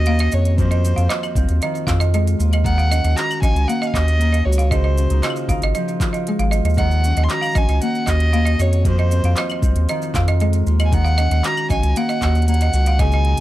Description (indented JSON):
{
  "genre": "folktronica",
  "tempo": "116 BPM",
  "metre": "4/4",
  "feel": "straight",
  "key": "Eb dorian",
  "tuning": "A4 = 442 Hz",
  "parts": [
    { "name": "dark violin", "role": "melody", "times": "0.0-13.4 s", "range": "C5 to C6", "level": "-24 LUFS", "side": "equal", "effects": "tape echo" },
    { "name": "Celtic harp", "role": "arpeggios", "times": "0.0-13.4 s", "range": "F2 to Gb4", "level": "-24 LUFS", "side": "left 2 dB", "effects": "tape echo" },
    { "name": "round analog bass", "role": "bass", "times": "0.0-13.3 s", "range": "Ab1 to F2", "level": "-16 LUFS", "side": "equal", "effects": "none" },
    { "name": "folk marimba with hard mallets", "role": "second line", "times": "0.1-13.2 s", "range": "Eb5 to F5", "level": "-26 LUFS", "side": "right 6 dB", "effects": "tape echo" },
    { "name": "organic electronic drum kit", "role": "drums", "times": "0.1-13.4 s", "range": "claves, handclaps, hi-hat, shaker", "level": "-29 LUFS", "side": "equal", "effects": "overdrive, studio reverb" },
    { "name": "electronic kick drum", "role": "drums", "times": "0.6-13.1 s", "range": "none", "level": "-22 LUFS", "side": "equal", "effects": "overdrive, studio reverb" }
  ],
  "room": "small room ambience",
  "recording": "dry, close 1970s-style studio recording",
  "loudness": "-15 LUFS",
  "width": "side -15 dB against mid",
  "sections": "0.0-13.4 A section",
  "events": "none",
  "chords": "0.0 Ebm7; 0.6 Fm7; 2.6 Ebm7; 4.7 Dbadd9; 6.8 Ebm7; 8.9 Fm7; 10.9 Ebm7",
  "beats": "0.06 | 0.58 1.10 1.62 2.13 | 2.65 3.17 3.69 4.20 | 4.72 5.24 5.75 6.27 | 6.79 7.31 7.82 8.34 | 8.86 9.38 9.89 10.41 | 10.93 11.44 11.96 12.48 | 12.99"
}